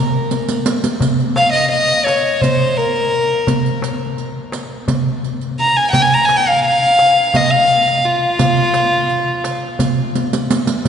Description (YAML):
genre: Turkish makam ensemble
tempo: 171 BPM (eighths)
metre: 7/8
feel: straight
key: F makam ussak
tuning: A4 = 440 Hz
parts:
  - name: warm violin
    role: melody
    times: 0.0-9.8 s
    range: F4 to Bb5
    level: -14 LUFS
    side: left 1 dB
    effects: none
  - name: darbuka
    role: percussion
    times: 0.3-10.9 s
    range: none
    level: -20 LUFS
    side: left 1 dB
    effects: none
  - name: riq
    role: percussion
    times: 0.3-10.9 s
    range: none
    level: -22 LUFS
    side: right 3 dB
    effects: none
room: wet cathedral reverb, RT60 4.2 s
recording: recorded in a church or concert hall, nothing above 10.8 kHz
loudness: -13 LUFS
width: side -8 dB against mid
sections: 0.0-10.9 A section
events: drum fill 0.3-1.0, 10.2-10.9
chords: none